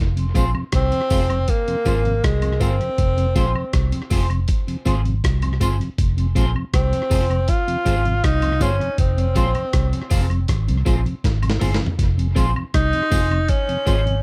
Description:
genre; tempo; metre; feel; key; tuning
roots reggae; 80 BPM; 4/4; straight; F minor; A4 = 441 Hz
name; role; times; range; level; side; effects
vintage muted fingered electric bass; bass; 0.0-14.2 s; F1 to C2; -23 LUFS; equal; none
mellow tonewheel organ; accompaniment; 0.2-14.2 s; F2 to F4; -30 LUFS; equal; slow rotary speaker
dusty soul sampler-style drum kit; drums; 0.2-14.2 s; hi-hat, kick drum, rim click, snare drum, toms; -24 LUFS; equal; none
electric guitar at the edge of break-up; accompaniment; 0.3-14.0 s; C4 to C5; -32 LUFS; equal; analog chorus, tape echo
tambourine and woodblock; percussion; 0.4-14.0 s; none; -38 LUFS; equal; none
breathy tenor saxophone; melody; 0.8-14.2 s; Ab3 to F4; -25 LUFS; equal; tape echo
room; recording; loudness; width
little or no reverb; none; -20 LUFS; mono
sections
0.0-14.2 A section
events
drum fill 11.2-12.0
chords
0.0 Fm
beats
0.73 1.48 2.23 | 2.98 3.73 4.48 5.23 | 5.99 6.74 7.49 8.24 | 8.99 9.74 10.49 11.24 | 11.99 12.74 13.49

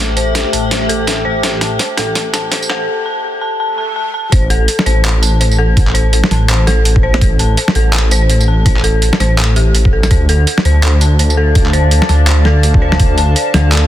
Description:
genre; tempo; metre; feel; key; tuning
half-time drum and bass; 166 BPM; 4/4; swing 59% on 16ths, half-time; A minor; A4 = 440 Hz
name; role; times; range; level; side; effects
dark analog pad; sustained chords; 0.0-2.9, 10.9-13.9 s; A3 to A5; -21 LUFS; left 2 dB; chorus, phaser, sidechain pumping
dark detuned synth bell; arpeggios; 0.0-13.9 s; G4 to A5; -18 LUFS; left 2 dB; chorus, vintage 12-bit sampler grit, ping-pong delay
dark detuned saw bass; bass; 0.0-13.9 s; A1 to D2; -12 LUFS; equal; none
metallic inharmonic drone; texture; 0.0-2.9 s; G4; -25 LUFS; right 1 dB; chorus, built-in reverb
boom bap sampler-style drum kit; drums; 0.2-13.8 s; handclaps, hi-hat, snare drum, tambourine; -17 LUFS; right 1 dB; overdrive, high-pass filter on hats, high-pass filter on snare, high-pass filter on perc
electronic kick drum; drums; 0.4-13.1 s; none; -13 LUFS; equal; overdrive, high-pass filter on kick
swell; sound effects; 3.7-4.3 s; none; -28 LUFS; left 1 dB; none
room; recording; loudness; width
digital ambience; dense, heavily limited modern master, high-pass filter; -10 LUFS; side -12 dB against mid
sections
0.0-4.3 A section; 4.3-13.9 B section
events
build-up 0.0-4.3; drum fill 0.0-2.9; break 2.9-4.3; swell 3.7-4.3; drop 4.3-13.9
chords
0.0 Am; 10.1 Dm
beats
0.35 0.71 1.07 | 1.43 1.79 2.15 2.52 | 2.88 3.24 3.60 3.96 | 4.32 4.68 5.05 5.41 | 5.77 6.13 6.49 6.85 | 7.21 7.58 7.94 8.30 | 8.66 9.02 9.38 9.74 | 10.11 10.47 10.83 11.19 | 11.55 11.91 12.28 12.64 | 13.00 13.36 13.72

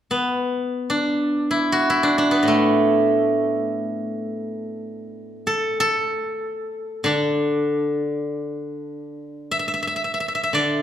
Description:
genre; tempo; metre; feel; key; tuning
chinese traditional, Chinese solo plucked strings; free time; none; none; D gong mode; A4 = 441 Hz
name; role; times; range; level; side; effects
steel-string zither; solo; 0.1-10.8 s; A2 to E5; -20 LUFS; equal; none
room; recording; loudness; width
wet recital hall reverb, RT60 1.4 s; recorded in a church or concert hall; -19 LUFS; side -10 dB against mid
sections
0.0-9.5 A section; 9.5-10.8 B section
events
none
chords
none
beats
free time

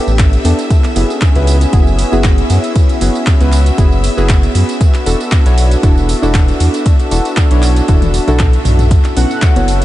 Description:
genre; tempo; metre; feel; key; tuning
deep house; 117 BPM; 4/4; swing 54% on 16ths; unclear; A4 = 439 Hz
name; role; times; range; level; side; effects
warm analog pad; sustained chords; 0.0-9.8 s; B3 to A4; -20 LUFS; equal; chorus, sidechain pumping
deep mellow chord stab; stabs; 0.0-9.8 s; B3 to C#5; -18 LUFS; equal; chorus, sidechain pumping, tape echo
string machine, violins; texture; 0.0-9.8 s; E5 to E6; -27 LUFS; equal; ensemble chorus, sidechain pumping
round analog bass; bass; 0.1-9.8 s; E1 to F#2; -12 LUFS; equal; sidechain pumping
deep house drum kit; drums; 0.1-9.8 s; handclaps, hi-hat, tambourine, toms; -21 LUFS; equal; none
electronic kick drum; drums; 0.2-9.5 s; none; -10 LUFS; equal; none
warm velvety synth lead; melody; 9.2-9.8 s; E5 to F#5; -20 LUFS; left 2 dB; chorus, tremolo
congas; percussion; 9.6-9.7 s; none; -24 LUFS; right 3 dB; none
room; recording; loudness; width
light reverb, digital ambience; nothing above 10.4 kHz; -9 LUFS; side -15 dB against mid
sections
0.0-9.8 A section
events
drum fill 7.9-8.9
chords
0.0 A9sus4; 0.7 F#9sus4; 4.8 E9sus4; 8.9 B9sus4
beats
0.19 | 0.70 1.22 1.73 2.24 | 2.76 3.27 3.78 4.29 | 4.81 5.32 5.83 6.35 | 6.86 7.37 7.88 8.40 | 8.91 9.42

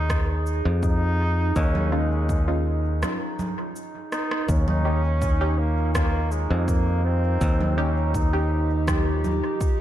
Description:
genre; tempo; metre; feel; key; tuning
ambient dub; 82 BPM; 4/4; straight; Eb mixolydian; A4 = 439 Hz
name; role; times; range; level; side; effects
bright trombone; melody; 0.0-8.9 s; Ab3 to Eb4; -30 LUFS; equal; dub echo
warbly tape-like pad; sustained chords; 0.0-9.8 s; Eb3 to Eb5; -31 LUFS; right 2 dB; chorus, built-in reverb, phaser
fingered electric bass; bass; 0.0-9.4 s; Eb2 to F2; -22 LUFS; equal; none
electronic kick drum; drums; 0.1-9.8 s; none; -25 LUFS; equal; overdrive
electronic rim click, cabasa and congas; drums; 0.1-9.8 s; none; -31 LUFS; right 1 dB; overdrive, dub echo
filtered dub chord stab; stabs; 1.9-9.8 s; Db4 to G4; -34 LUFS; right 1 dB; wide subtle chorus, dub echo
room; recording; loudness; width
light reverb, digital ambience; none; -21 LUFS; side -12 dB against mid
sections
0.0-4.5 A section; 4.5-9.8 B section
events
break 3.0-4.5; drum fill 4.1-4.5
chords
0.0 Dbadd9/Eb; 4.5 Eb7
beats
0.10 0.83 | 1.56 2.29 3.02 3.75 | 4.49 5.22 5.95 6.68 | 7.41 8.14 8.88 9.61

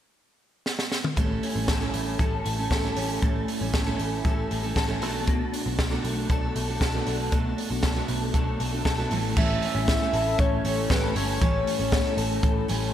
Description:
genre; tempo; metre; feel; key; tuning
jangly indie pop; 117 BPM; 4/4; straight; unclear; A4 = 440 Hz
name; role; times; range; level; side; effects
compact cocktail drum kit; drums; 0.7-12.8 s; crash cymbal, hi-hat, kick drum, snare drum, toms; -26 LUFS; equal; none
picked steel-string acoustic guitar; accompaniment; 1.2-12.9 s; A2 to A4; -31 LUFS; right 5 dB; slapback echo
electric guitar through a small old amp; arpeggios; 1.2-12.9 s; A2 to A4; -30 LUFS; left 4 dB; ensemble chorus, slapback echo, analog delay
vintage muted picked electric bass; bass; 1.2-12.9 s; G1 to B1; -30 LUFS; equal; none
soft octave-layered synth lead; melody; 9.4-12.1 s; B4 to E5; -28 LUFS; left 1 dB; chorus, analog delay
room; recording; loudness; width
moderate lush hall reverb, RT60 2.2 s; big arena sound; -23 LUFS; side -10 dB against mid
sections
0.0-1.2 A section; 1.2-9.4 B section; 9.4-12.9 C section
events
drum fill 0.7-1.2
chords
0.0 N.C.; 1.2 A7; 5.0 Bm7; 9.1 A7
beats
0.14 0.66 | 1.17 1.68 2.20 2.71 | 3.22 3.74 4.25 4.76 | 5.28 5.79 6.30 6.81 | 7.32 7.84 8.35 8.86 | 9.37 9.88 10.39 10.90 | 11.41 11.92 12.43

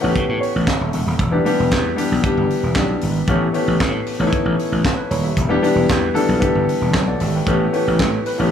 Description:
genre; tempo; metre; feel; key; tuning
disco; 115 BPM; 4/4; straight; E dorian; A4 = 440 Hz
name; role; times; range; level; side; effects
clear baby grand piano; accompaniment; 0.0-8.5 s; E3 to G5; -19 LUFS; left 2 dB; none
gritty slap bass; bass; 0.0-8.5 s; D#1 to A2; -20 LUFS; equal; overdrive
tight funk drum kit; drums; 0.2-8.4 s; handclaps, hi-hat, kick drum, snare drum; -22 LUFS; right 1 dB; none
room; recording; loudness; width
light reverb; studio reverb; -16 LUFS; side -8 dB against mid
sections
0.0-8.5 A section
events
grand piano fill 0.2-1.2, 8.0-8.5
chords
0.0 A9; 1.2 Em7; 3.3 A9; 5.4 Em7; 7.5 A9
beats
0.15 0.67 | 1.20 1.72 2.24 2.76 | 3.28 3.81 4.33 4.85 | 5.37 5.90 6.42 6.94 | 7.47 7.99

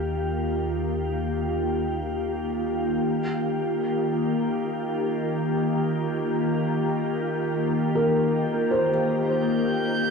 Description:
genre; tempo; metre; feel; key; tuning
ambient; free time; none; none; Eb major; A4 = 440 Hz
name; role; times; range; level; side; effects
glassy FM pad; sustained chords; 0.0-10.1 s; Eb3 to G4; -24 LUFS; left 1 dB; ensemble chorus, built-in reverb, cassette tape, shimmer reverb
warm sub bass; bass; 0.0-3.0 s; Eb2; -32 LUFS; right 1 dB; none
felt-muted upright piano; arpeggios; 8.0-10.1 s; Bb4 to C5; -25 LUFS; right 1 dB; cassette tape, analog delay, shimmer reverb
drifting glass-harmonics texture; texture; 9.4-10.1 s; G6; -30 LUFS; right 3 dB; chorus, built-in reverb, cassette tape
room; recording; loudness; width
wet studio reverb, RT60 0.5 s; home recording on cassette; -23 LUFS; side -5 dB against mid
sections
0.0-3.0 A section; 3.0-10.1 B section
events
none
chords
0.0 Eb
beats
free time

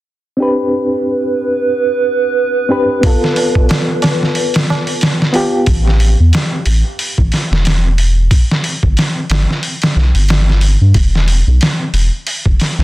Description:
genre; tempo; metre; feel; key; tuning
trip hop; 91 BPM; 4/4; swing 58% on 16ths; A minor; A4 = 442 Hz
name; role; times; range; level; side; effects
reed electric piano; accompaniment; 0.4-5.7 s; B3 to B4; -17 LUFS; equal; fast tremolo, harmonic tremolo, tape echo
warbly tape-like pad; sustained chords; 1.0-5.7 s; B4; -17 LUFS; right 2 dB; chorus, built-in reverb
trip hop sampler-style drum kit; drums; 3.0-12.8 s; hi-hat, kick drum, snare drum; -14 LUFS; equal; studio ambience
tabla; percussion; 3.0-5.7 s; none; -26 LUFS; right 3 dB; none
soft dub sub bass; bass; 5.7-12.8 s; E1 to G2; -11 LUFS; equal; none
room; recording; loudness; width
little or no reverb; dense, heavily limited modern master; -11 LUFS; side -17 dB against mid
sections
0.4-5.7 A section; 5.7-12.8 B section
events
none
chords
0.4 Gadd11; 3.0 G9 (rootless); 5.7 A5; 8.3 N.C.; 10.9 E5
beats
| 0.39 1.05 1.71 2.37 | 3.03 3.69 4.35 5.01 | 5.67 6.33 6.99 7.65 | 8.31 8.96 9.62 10.28 | 10.94 11.60 12.26

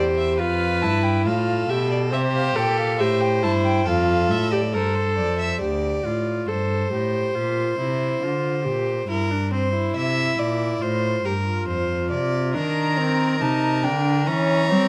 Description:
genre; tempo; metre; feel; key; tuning
classical, baroque-style fugue for string quartet; 69 BPM; 4/4; straight; unclear; A4 = 440 Hz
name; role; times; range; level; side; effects
dark violin; melody; 0.0-5.6, 12.5-14.9 s; C5 to Bb5; -30 LUFS; equal; none
rich violin; second line; 0.0-14.9 s; G4 to E5; -28 LUFS; equal; none
warm viola; accompaniment; 0.0-14.9 s; C4 to C5; -26 LUFS; equal; none
rich cello; bass; 0.0-14.9 s; D2 to G3; -27 LUFS; equal; none
room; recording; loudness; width
light reverb; close, detailed microphones; -22 LUFS; mono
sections
0.0-5.6 A section; 5.6-14.9 B section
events
none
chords
0.4 G7/F; 2.1 C7; 3.9 F; 5.6 Dm7; 7.4 Gm/Bb; 9.1 C7/G; 10.8 F; 12.6 Cm7/Eb; 14.3 Edim7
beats
0.39 1.26 | 2.13 3.00 3.87 4.74 | 5.61 6.49 7.36 8.23 | 9.10 9.96 10.82 11.69 | 12.55 13.42 14.28

